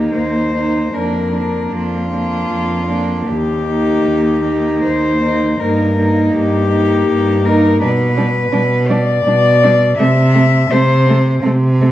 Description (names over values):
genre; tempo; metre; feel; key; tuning
classical, lyrical piece for cello ensemble; 68-86 BPM; 3/4; rubato; Eb major, G major from 7.8 s; A4 = 439 Hz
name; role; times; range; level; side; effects
warm cello; melody; 0.0-11.4 s; F4 to E5; -17 LUFS; left 4 dB; none
warm cello; second line; 0.0-11.9 s; C4 to Eb4; -19 LUFS; right 3 dB; none
warm cello; accompaniment; 0.0-11.9 s; G3 to Bb3; -21 LUFS; left 2 dB; none
warm cello; bass; 0.0-11.9 s; Eb2 to C3; -16 LUFS; right 1 dB; none
room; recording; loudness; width
wet recital hall reverb, RT60 1.6 s; worn, warbling old tape, cassette tape, warbly pitch drift; -12 LUFS; side -13 dB against mid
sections
0.0-11.9 A section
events
none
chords
0.0 Eb5; 1.0 Bb/F; 3.3 Eb; 5.6 Eb/G; 7.8 G/B; 10.0 Am/C